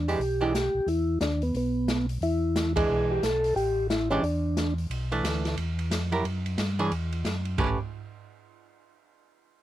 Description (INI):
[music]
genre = soul jazz organ trio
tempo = 179 BPM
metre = 4/4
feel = swing 62% on 8ths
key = A mixolydian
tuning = A4 = 440 Hz
[part]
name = percussive tonewheel organ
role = melody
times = 0.0-4.7 s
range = B3 to A4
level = -26 LUFS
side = equal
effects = slow rotary speaker
[part]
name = mellow tonewheel organ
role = bass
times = 0.0-7.8 s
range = A1 to G2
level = -29 LUFS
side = equal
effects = chorus vibrato, slow rotary speaker
[part]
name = archtop guitar, miked and amplified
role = accompaniment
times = 0.1-0.5, 2.8-7.8 s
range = E3 to C#5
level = -27 LUFS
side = right 2 dB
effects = none
[part]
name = open jazz drum kit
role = drums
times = 0.1-7.7 s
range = crash cymbal, hi-hat, kick drum, ride cymbal, snare drum, toms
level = -33 LUFS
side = equal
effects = none
[sound]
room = little or no reverb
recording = close, detailed microphones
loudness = -25 LUFS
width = side -13 dB against mid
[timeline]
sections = 0.0-4.9 A section; 4.9-7.6 B section; 7.6-8.9 C section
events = band accent 2.7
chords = 0.0 E7#9; 3.6 A5; 4.2 Dsus2/E; 4.9 Bm7; 5.6 Esus2; 6.2 F#5; 6.9 Esus2; 7.6 A9